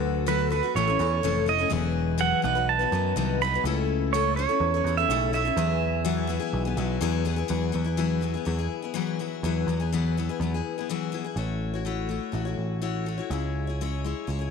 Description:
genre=folk rock and heartland rock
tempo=124 BPM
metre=4/4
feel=straight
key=E major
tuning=A4 = 441 Hz
part: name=picked steel-string acoustic guitar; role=accompaniment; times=0.0-14.5 s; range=A2 to C#5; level=-28 LUFS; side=left 10 dB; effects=none
part: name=picked electric bass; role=bass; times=0.0-14.5 s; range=E1 to F#2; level=-28 LUFS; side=right 1 dB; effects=none
part: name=pedal steel guitar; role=melody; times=0.3-7.0 s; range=B4 to B5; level=-26 LUFS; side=right 12 dB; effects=none
room=moderate plate reverb, RT60 2.5 s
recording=1960s-style stereo with parts hard left and right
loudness=-24 LUFS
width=side -6 dB against mid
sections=0.0-7.5 A section; 7.5-11.4 B section; 11.4-14.5 C section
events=none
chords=0.0 D6; 0.8 A; 1.7 Eadd9; 2.4 B; 3.6 A/C#; 5.6 Eadd9; 11.4 A6; 13.3 C#m

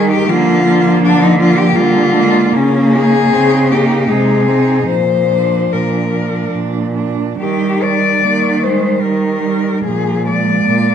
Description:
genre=classical, lyrical piece for cello ensemble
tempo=66-82 BPM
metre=3/4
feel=rubato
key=Eb major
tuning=A4 = 440 Hz
part: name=rich cello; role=melody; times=0.0-10.9 s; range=Db4 to D5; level=-15 LUFS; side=left 5 dB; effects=none
part: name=rich cello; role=second line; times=0.0-10.9 s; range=G3 to Eb4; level=-19 LUFS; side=right 8 dB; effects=none
part: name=dark cello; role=accompaniment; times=0.0-10.9 s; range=Eb3 to C4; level=-16 LUFS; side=left 1 dB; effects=none
part: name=warm cello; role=bass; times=0.0-10.9 s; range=Bb2 to Eb3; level=-18 LUFS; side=right 2 dB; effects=none
room=wet recital hall reverb, RT60 1.8 s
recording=dark, warm production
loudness=-11 LUFS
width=side -8 dB against mid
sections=0.0-10.9 A section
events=none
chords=0.3 Bb/D; 2.5 Eb5/Db; 4.1 Ab/C; 4.9 Bb; 7.4 Eb; 9.8 Bb7

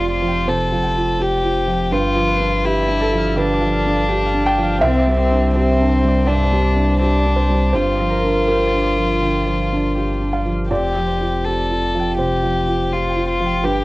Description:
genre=neoclassical piano and strings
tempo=82 BPM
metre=4/4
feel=rubato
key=unclear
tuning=A4 = 438 Hz
part: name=rich violin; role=melody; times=0.0-13.8 s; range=C4 to A4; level=-20 LUFS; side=left 2 dB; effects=cassette tape
part: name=felt-muted upright piano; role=accompaniment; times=0.0-13.8 s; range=C2 to G5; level=-20 LUFS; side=right 2 dB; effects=cassette tape
part: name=concert harp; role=arpeggios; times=0.0-13.8 s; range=C4 to G5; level=-27 LUFS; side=right 1 dB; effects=cassette tape
part: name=warm sub bass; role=bass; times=0.0-13.8 s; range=F1 to C2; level=-21 LUFS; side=equal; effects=none
room=small room ambience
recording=home recording on cassette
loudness=-15 LUFS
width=side -20 dB against mid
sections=0.0-13.8 A section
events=none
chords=0.0 Fsus2; 1.9 G7; 4.8 Csus2; 7.7 Gm7; 10.7 Fsus2

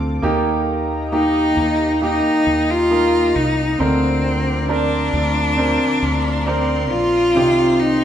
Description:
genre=pop ballad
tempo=67 BPM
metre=4/4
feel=straight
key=Bb major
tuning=A4 = 440 Hz
part: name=clear baby grand piano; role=accompaniment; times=0.0-8.0 s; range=C3 to Bb4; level=-21 LUFS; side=right 1 dB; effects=none
part: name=lush unison pad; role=sustained chords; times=0.0-8.0 s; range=G4 to D6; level=-27 LUFS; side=left 1 dB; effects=chorus
part: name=picked steel-string acoustic guitar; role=arpeggios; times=0.0-8.0 s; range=C3 to G4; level=-30 LUFS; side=left 3 dB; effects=none
part: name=mellow fretless electric bass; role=bass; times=0.0-8.0 s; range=Bb1 to Eb2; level=-23 LUFS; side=right 1 dB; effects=none
part: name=clear cello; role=melody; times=1.1-8.0 s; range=C4 to F4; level=-18 LUFS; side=left 1 dB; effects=none
room=wet large studio reverb, RT60 0.9 s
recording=band playing live in one room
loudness=-15 LUFS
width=side -10 dB against mid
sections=0.0-8.0 A section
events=none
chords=0.2 Eb; 3.8 Bbadd9/D; 7.3 Cm

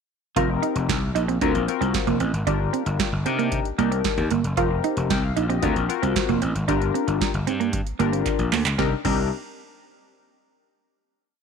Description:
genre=early-eighties boogie funk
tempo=114 BPM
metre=4/4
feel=straight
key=C minor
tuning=A4 = 440 Hz
part: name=chorused polysynth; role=accompaniment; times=0.4-9.3 s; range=C4 to G5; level=-26 LUFS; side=left 15 dB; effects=none
part: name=clean electric guitar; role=riff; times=0.4-9.2 s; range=A#3 to F4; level=-26 LUFS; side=right 14 dB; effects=analog chorus
part: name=gritty slap bass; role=bass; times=0.4-9.3 s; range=F1 to C3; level=-25 LUFS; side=equal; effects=overdrive
part: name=booming analog drum machine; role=drums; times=0.4-9.2 s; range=crash cymbal, handclaps, hi-hat, kick drum, snare drum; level=-27 LUFS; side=right 2 dB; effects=overdrive
room=light reverb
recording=1960s-style stereo with parts hard left and right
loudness=-20 LUFS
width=side -6 dB against mid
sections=0.4-8.8 verse; 8.8-10.9 final chord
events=drum fill 8.3-8.8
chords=0.4 F9sus4; 1.4 D7alt; 2.5 Gm7; 3.3 Cm7; 4.6 F9sus4; 5.6 D7alt; 6.7 Gm7; 8.8 Cm7

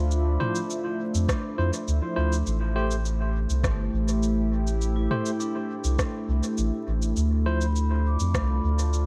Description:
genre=ambient dub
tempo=102 BPM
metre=4/4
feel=straight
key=A minor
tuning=A4 = 440 Hz
part: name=deep dark ambient pad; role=sustained chords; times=0.0-9.1 s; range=A3 to E5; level=-33 LUFS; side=equal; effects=chorus, built-in reverb
part: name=vibraphone with medium hard mallets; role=arpeggios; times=0.0-9.1 s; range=A3 to D6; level=-37 LUFS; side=equal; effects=dub echo
part: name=soft dub sub bass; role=bass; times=0.0-9.1 s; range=G1 to F2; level=-26 LUFS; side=equal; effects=tube saturation
part: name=organic electronic drum kit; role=drums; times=0.1-9.1 s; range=rim click, shaker, toms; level=-36 LUFS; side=equal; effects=studio reverb, dub echo
part: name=tine electric piano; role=stabs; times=0.4-7.7 s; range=F3 to C5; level=-34 LUFS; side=equal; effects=dub echo
part: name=electronic kick drum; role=drums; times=1.3-8.5 s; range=none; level=-30 LUFS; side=equal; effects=studio reverb
room=light reverb, digital ambience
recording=vinyl crackle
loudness=-26 LUFS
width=mono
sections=0.0-9.1 A section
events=none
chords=0.0 Dm9; 2.5 Am7; 7.2 Dm9

